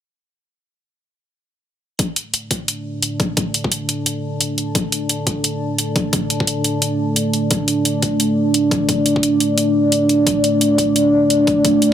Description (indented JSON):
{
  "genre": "half-time drum and bass",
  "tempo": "174 BPM",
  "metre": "4/4",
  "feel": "swing 59% on 16ths, half-time",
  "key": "unclear",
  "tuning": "A4 = 439 Hz",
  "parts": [
    { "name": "dark analog pad", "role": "sustained chords", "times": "2.7-11.9 s", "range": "A3 to A5", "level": "-17 LUFS", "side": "equal", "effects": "chorus, sidechain pumping" },
    { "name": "electronic hi-hat", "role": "drums", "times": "2.0-11.9 s", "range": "none", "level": "-20 LUFS", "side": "equal", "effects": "overdrive" },
    { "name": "electronic kick drum", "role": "drums", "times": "2.0-11.7 s", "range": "none", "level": "-21 LUFS", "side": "left 1 dB", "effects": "overdrive, high-pass filter on kick, high-pass filter on room" }
  ],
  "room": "light reverb",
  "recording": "dense, heavily limited modern master",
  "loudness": "-15 LUFS",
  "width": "side -10 dB against mid",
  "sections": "2.0-11.9 A section",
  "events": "filter sweep on analog synth pad 2.0-11.9",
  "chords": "2.0 D5"
}